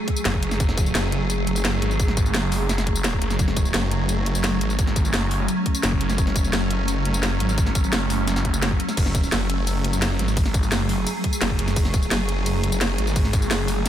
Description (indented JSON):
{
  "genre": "dark technical drum and bass",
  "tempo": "172 BPM",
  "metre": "4/4",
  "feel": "straight",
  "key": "F# minor",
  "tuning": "A4 = 440 Hz",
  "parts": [
    { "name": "swarming drone", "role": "sustained chords", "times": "0.0-13.9 s", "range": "F#3 to G#4", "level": "-26 LUFS", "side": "right 1 dB", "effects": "built-in reverb, sidechain pumping" },
    { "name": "drum and bass drum kit", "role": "drums", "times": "0.1-13.9 s", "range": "crash cymbal, hi-hat, ride cymbal, snare drum, tambourine", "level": "-26 LUFS", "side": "equal", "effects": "overdrive" },
    { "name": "electronic kick drum", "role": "drums", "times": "0.1-13.4 s", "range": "none", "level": "-22 LUFS", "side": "equal", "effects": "overdrive" },
    { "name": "snarling distorted saw bass", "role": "bass", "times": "0.3-13.9 s", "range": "F#1 to G#1", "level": "-24 LUFS", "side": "equal", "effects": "distortion, tube saturation, sidechain pumping" }
  ],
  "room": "light reverb",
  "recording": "none",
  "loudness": "-19 LUFS",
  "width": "side -10 dB against mid",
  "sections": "0.0-13.9 A section",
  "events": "none",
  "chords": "0.0 F#madd9",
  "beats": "0.25 | 0.60 0.95 1.30 1.65 | 2.00 2.35 2.69 3.04 | 3.39 3.74 4.09 4.44 | 4.79 5.14 5.48 5.83 | 6.18 6.53 6.88 7.23 | 7.58 7.93 8.28 8.62 | 8.97 9.32 9.67 10.02 | 10.37 10.72 11.07 11.41 | 11.76 12.11 12.46 12.81 | 13.16 13.51 13.86"
}